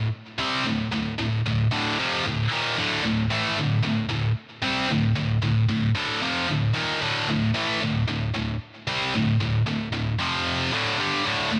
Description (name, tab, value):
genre	metal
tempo	113 BPM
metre	4/4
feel	straight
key	D minor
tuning	A4 = 441 Hz
part	heavy high-gain guitar	solo	0.0-11.6 s	D2 to C4	-24 LUFS	equal	distortion, delay
room	little or no reverb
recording	none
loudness	-24 LUFS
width	mono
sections	0.0-11.2 A section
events	half time 0.0-11.2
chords	0.0 D5; 10.2 F5; 10.7 D5